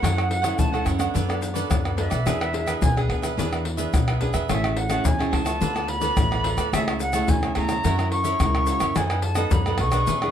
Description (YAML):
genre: samba and choro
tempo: 107 BPM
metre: 4/4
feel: straight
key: A major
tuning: A4 = 436 Hz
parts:
  - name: silver concert flute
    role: melody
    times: 0.0-10.3 s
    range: E5 to C#6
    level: -26 LUFS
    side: left 1 dB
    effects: none
  - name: cavaquinho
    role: accompaniment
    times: 0.0-10.3 s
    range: D4 to A5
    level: -31 LUFS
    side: right 8 dB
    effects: none
  - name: nylon-string guitar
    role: accompaniment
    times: 0.0-10.3 s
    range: A2 to A#4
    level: -29 LUFS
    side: equal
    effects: none
  - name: upright bass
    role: bass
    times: 0.0-10.3 s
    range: A1 to F#2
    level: -26 LUFS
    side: equal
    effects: none
  - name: tube shaker, surdo, pandeiro and tamborim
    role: percussion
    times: 0.0-10.3 s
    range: none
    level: -25 LUFS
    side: left 2 dB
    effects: none
room: light reverb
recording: none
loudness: -20 LUFS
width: side -9 dB against mid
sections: 0.0-10.3 A section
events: flute solo 0.0-10.3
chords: 0.0 F#m7; 1.1 Bm7/F#; 2.3 E7; 4.5 Amaj7; 5.6 Dm6; 6.7 Amaj7/C#; 7.8 F#7; 9.0 B7/F#